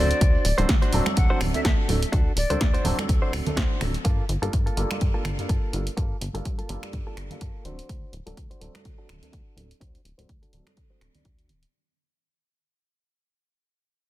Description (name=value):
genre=filtered disco house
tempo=125 BPM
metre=4/4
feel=swing 56% on 16ths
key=unclear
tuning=A4 = 440 Hz
part: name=breathy bright jazz flute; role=melody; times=0.0-2.8 s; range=D5 to F#5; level=-30 LUFS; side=equal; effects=sidechain pumping, low-pass filter, ping-pong delay
part: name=warm grand piano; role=accompaniment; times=0.0-11.2 s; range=F#3 to D5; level=-32 LUFS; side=right 1 dB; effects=phaser, sidechain pumping, low-pass filter
part: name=direct-recorded clean electric guitar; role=riff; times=0.0-11.5 s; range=Bb3 to D5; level=-33 LUFS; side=equal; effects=sidechain pumping, low-pass filter
part: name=plucky analog bass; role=bass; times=0.0-11.7 s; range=D1 to G2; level=-27 LUFS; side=equal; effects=tube saturation, sidechain pumping, low-pass filter
part: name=punchy analog drum machine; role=drums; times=0.1-11.7 s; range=finger snaps, hi-hat, snare drum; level=-31 LUFS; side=right 1 dB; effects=sidechain pumping on hats, soft clipping on snare, sidechain pumping on cymbals
part: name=tambourine and congas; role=percussion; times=0.1-11.7 s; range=none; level=-35 LUFS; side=right 2 dB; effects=none
part: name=electronic kick drum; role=drums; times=0.2-11.4 s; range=none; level=-24 LUFS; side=equal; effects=none
room=digital ambience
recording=dense, heavily limited modern master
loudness=-21 LUFS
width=side -15 dB against mid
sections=0.0-11.7 A section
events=fade-out 0.0-11.7; filter sweep 0.0-11.7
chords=0.0 D7; 4.0 Gm9; 7.6 D7